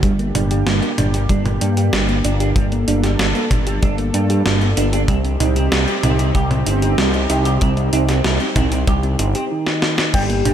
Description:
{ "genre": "synthwave", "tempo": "95 BPM", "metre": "4/4", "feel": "straight", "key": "G minor", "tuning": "A4 = 444 Hz", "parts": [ { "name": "chorused pulse-width pad", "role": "sustained chords", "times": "0.0-10.5 s", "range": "G3 to A4", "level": "-24 LUFS", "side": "equal", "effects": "sidechain pumping" }, { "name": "thumb-piano-like synth pluck", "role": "arpeggios", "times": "0.0-10.5 s", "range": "G3 to G4", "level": "-23 LUFS", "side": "right 4 dB", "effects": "chorus, tape echo" }, { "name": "semi-hollow electric guitar", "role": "riff", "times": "0.0-10.5 s", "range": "G3 to G4", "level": "-27 LUFS", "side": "right 4 dB", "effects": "lush chorus, low-pass filter, tape echo" }, { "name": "fat analog bass", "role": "bass", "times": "0.0-10.5 s", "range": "G1 to G2", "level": "-18 LUFS", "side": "equal", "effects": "tube saturation, sidechain pumping" }, { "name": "gated 80s digital drum machine", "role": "drums", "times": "0.0-10.5 s", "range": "crash cymbal, hi-hat, snare drum, toms", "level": "-22 LUFS", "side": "equal", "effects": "gated reverb, gated reverb snare" }, { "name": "kick drum", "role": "drums", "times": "0.0-10.3 s", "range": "none", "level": "-20 LUFS", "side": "equal", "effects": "none" }, { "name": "warm velvety synth lead", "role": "melody", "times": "9.5-10.5 s", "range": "Eb4 to G4", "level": "-21 LUFS", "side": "left 1 dB", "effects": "chorus, tremolo, ping-pong delay" }, { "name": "FM electric piano with soft pad layer", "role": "second line", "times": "10.1-10.5 s", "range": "G5", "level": "-24 LUFS", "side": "left 3 dB", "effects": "chorus" } ], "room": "light reverb, digital ambience", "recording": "none", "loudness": "-15 LUFS", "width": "side -9 dB against mid", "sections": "0.0-10.1 A section", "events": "filter sweep on synth arpeggio sound 0.0-10.1; drum fill 9.7-10.1", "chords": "0.0 Gm; 5.1 Cm" }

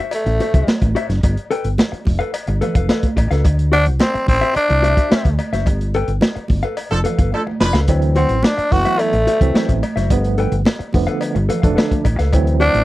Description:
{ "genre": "funk", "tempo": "108 BPM", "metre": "4/4", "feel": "straight", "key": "D mixolydian", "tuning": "A4 = 441 Hz", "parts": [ { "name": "mellow electric guitar", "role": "accompaniment", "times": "0.0-12.8 s", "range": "F#4 to G5", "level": "-24 LUFS", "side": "left 4 dB", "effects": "none" }, { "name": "growling tenor saxophone", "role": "melody", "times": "0.1-12.8 s", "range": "A3 to F#4", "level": "-17 LUFS", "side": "equal", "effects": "none" }, { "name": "crunchy breakbeat drum kit", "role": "drums", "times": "0.1-12.8 s", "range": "hi-hat, kick drum, snare drum", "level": "-17 LUFS", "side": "equal", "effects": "none" }, { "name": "cowbell", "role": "percussion", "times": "0.1-12.5 s", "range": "none", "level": "-31 LUFS", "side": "left 3 dB", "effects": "none" }, { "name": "hollow-body short-scale fingered electric bass", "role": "bass", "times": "0.3-12.8 s", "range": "F1 to D2", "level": "-18 LUFS", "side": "equal", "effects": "none" }, { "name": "congas", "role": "percussion", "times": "0.4-12.5 s", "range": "none", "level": "-28 LUFS", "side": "right 3 dB", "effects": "none" }, { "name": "warm horn section", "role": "second line", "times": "6.9-7.8 s", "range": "F3 to B4", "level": "-20 LUFS", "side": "right 1 dB", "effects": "none" }, { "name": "tine electric piano", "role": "stabs", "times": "7.9-12.8 s", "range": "D3 to D4", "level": "-21 LUFS", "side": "right 3 dB", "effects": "overdrive, fast stereo tremolo" } ], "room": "little or no reverb", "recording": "dry, close 1970s-style studio recording", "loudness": "-14 LUFS", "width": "side -17 dB against mid", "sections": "0.0-12.8 A section", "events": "band accent 5.7-7.9; drum fill 7.3-7.9", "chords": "0.0 D9 (rootless); 1.2 G9; 3.5 D9; 5.7 G9; 7.9 D9; 10.1 G9; 12.3 D9" }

